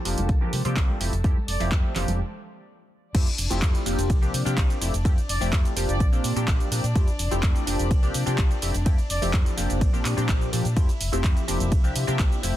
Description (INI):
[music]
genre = filtered disco house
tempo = 126 BPM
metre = 4/4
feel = straight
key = F major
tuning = A4 = 440 Hz
[part]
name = funky polysynth comp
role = accompaniment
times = 0.0-12.6 s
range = F3 to G4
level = -29 LUFS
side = left 1 dB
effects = chorus, phaser, sidechain pumping, low-pass filter
[part]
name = warm studio string section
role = sustained chords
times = 0.0-12.6 s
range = D4 to A5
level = -38 LUFS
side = left 2 dB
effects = sidechain pumping, low-pass filter
[part]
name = fingered electric bass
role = bass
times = 0.1-12.5 s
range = F1 to C3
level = -27 LUFS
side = equal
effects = tube saturation, sidechain pumping, low-pass filter
[part]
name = punchy analog drum machine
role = drums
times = 0.1-12.5 s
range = crash cymbal, handclaps, hi-hat, ride cymbal, shaker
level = -31 LUFS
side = right 1 dB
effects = sidechain pumping on hats, sidechain pumping on cymbals, sidechain pumping on perc
[part]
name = tambourine and congas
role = percussion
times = 0.1-2.2 s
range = none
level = -36 LUFS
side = right 4 dB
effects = sidechain pumping on perc, low-pass filter on perc
[part]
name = electronic kick drum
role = drums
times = 0.3-12.3 s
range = none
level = -22 LUFS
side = equal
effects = overdrive
[part]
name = warm trumpet section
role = melody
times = 1.5-1.7, 5.3-6.1, 9.1-9.3 s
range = D5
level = -34 LUFS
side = right 1 dB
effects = sidechain pumping, low-pass filter, ping-pong delay
[sound]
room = little or no reverb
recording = dense, heavily limited modern master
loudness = -21 LUFS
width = side -13 dB against mid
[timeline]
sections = 0.0-3.1 A section; 3.1-12.6 B section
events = break 2.2-3.1; drop 3.1-12.6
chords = 0.3 C9sus4; 1.0 Fmaj9; 2.2 N.C.; 3.1 Fmaj9; 4.1 C9sus4; 4.8 Fmaj9; 6.0 Bb69; 7.0 Fmaj9; 7.9 C9sus4; 8.6 Fmaj9; 9.8 Bb69; 10.8 Fmaj9; 11.7 C9sus4